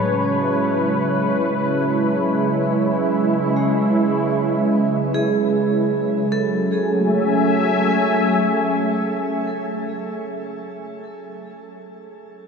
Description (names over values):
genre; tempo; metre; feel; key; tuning
ambient; 57 BPM; 3/4; straight; F# minor; A4 = 442 Hz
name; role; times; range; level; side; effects
warm analog pad; sustained chords; 0.0-10.2 s; C#3 to G#5; -19 LUFS; right 1 dB; chorus, shimmer reverb
vibraphone with medium hard mallets; arpeggios; 0.0-12.0 s; G#3 to A5; -25 LUFS; right 1 dB; diffuse ambient delay, shimmer reverb
analog drone; drone; 0.0-10.0 s; F#3 to C#4; -28 LUFS; equal; chorus
room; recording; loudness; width
wet cathedral reverb, RT60 7.1 s; in a vast, echoing space, nothing above 10.9 kHz; -17 LUFS; side -5 dB against mid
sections
0.0-6.3 A section; 6.3-9.5 B section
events
none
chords
0.0 C#m7; 6.3 F#m7